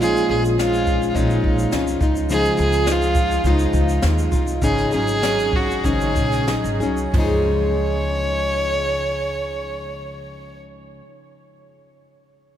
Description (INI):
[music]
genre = acoustic pop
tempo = 90-106 BPM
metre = 4/4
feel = straight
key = Db major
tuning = A4 = 441 Hz
[part]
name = dark violin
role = melody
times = 0.0-10.6 s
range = Eb4 to Db5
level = -23 LUFS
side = right 1 dB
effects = none
[part]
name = picked plugged-in steel-string acoustic guitar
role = accompaniment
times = 0.0-11.1 s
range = Ab2 to Ab4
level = -22 LUFS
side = left 1 dB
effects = none
[part]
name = upright bass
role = bass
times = 0.0-11.0 s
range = Ab1 to Eb2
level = -23 LUFS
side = equal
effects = none
[part]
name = jazz brush drum kit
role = drums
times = 0.0-7.3 s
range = hi-hat, kick drum, shaker, snare drum, toms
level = -25 LUFS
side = equal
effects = none
[sound]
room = wet cathedral reverb, RT60 5.2 s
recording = in a vast, echoing space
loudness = -17 LUFS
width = side -10 dB against mid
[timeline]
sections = 0.0-7.1 A section; 7.1-9.8 B section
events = slowing down 2.3-7.1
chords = 0.0 Bbm7; 2.0 Dbadd9; 4.6 Ab7sus4; 7.1 Dbadd9